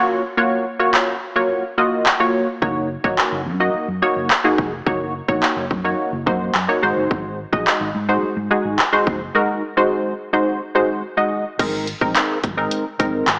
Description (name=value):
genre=dance-pop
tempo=107 BPM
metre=4/4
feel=straight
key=unclear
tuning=A4 = 440 Hz
part: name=funky polysynth comp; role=accompaniment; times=0.0-13.3 s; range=Ab3 to Eb5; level=-21 LUFS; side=equal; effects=chorus, sidechain pumping
part: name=house drum kit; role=drums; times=0.9-13.4 s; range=crash cymbal, handclaps, hi-hat, kick drum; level=-22 LUFS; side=equal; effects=overdrive
part: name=vintage muted fingered electric bass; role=bass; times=2.6-13.4 s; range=F1 to Ab2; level=-31 LUFS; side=equal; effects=sidechain pumping
room=moderate lush hall reverb, RT60 1.9 s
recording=AM radio sound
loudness=-19 LUFS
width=mono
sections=0.0-11.6 A section; 11.6-13.4 B section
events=none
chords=0.0 Gbmaj7; 2.6 Ebm7; 6.8 Ab7